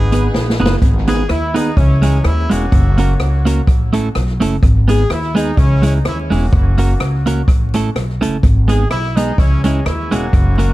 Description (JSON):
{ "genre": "ska", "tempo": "126 BPM", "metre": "4/4", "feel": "swing 54% on 8ths", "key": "G# minor", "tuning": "A4 = 436 Hz", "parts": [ { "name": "warm horn section", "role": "melody", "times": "0.0-10.7 s", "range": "E3 to G#4", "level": "-22 LUFS", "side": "equal", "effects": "tape echo" }, { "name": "upright bass", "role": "bass", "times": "0.0-10.7 s", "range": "E1 to D#2", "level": "-15 LUFS", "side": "equal", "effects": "none" }, { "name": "clean electric guitar", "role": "accompaniment", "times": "0.1-10.7 s", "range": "G#3 to B4", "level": "-18 LUFS", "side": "right 2 dB", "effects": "none" }, { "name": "swinging big-band drum kit", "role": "drums", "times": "0.1-10.7 s", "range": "hi-hat, kick drum, rim click, snare drum", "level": "-16 LUFS", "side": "equal", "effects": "none" } ], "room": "light reverb", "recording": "dark, warm production, vinyl crackle", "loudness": "-12 LUFS", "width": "side -17 dB against mid", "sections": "0.8-10.7 A section", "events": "drum fill 0.3-0.8", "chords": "0.0 G#m; 1.8 C#m; 2.7 F#; 3.7 A; 4.6 G#m; 5.6 C#m; 6.5 F#; 7.5 A; 8.4 G#m; 9.4 C#m", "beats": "0.34 | 0.82 1.29 1.77 2.24 | 2.72 3.19 3.67 4.15 | 4.62 5.10 5.57 6.05 | 6.53 7.00 7.48 7.95 | 8.43 8.90 9.38 9.86 | 10.33" }